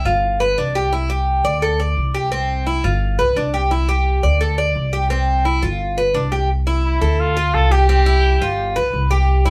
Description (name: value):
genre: latin, Cuban son and guajira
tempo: 172 BPM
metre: 4/4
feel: straight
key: C major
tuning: A4 = 441 Hz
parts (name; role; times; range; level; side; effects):
- Cuban tres; arpeggios; 0.0-9.5 s; C4 to D5; -21 LUFS; equal; none
- upright bass; bass; 0.1-9.5 s; G1 to D2; -21 LUFS; equal; none
- warm trumpet; melody; 6.8-8.8 s; E4 to A4; -22 LUFS; equal; none
room: moderate studio reverb, RT60 0.6 s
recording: band playing live in one room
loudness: -18 LUFS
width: mono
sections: 0.0-6.5 A section; 6.5-9.5 B section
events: none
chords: 0.2 G7; 0.9 C; 1.6 D5; 2.3 C; 3.0 G7; 3.7 C; 4.4 D5; 5.1 C; 5.8 G7; 6.5 C; 7.2 Dm7; 7.9 C; 8.6 G7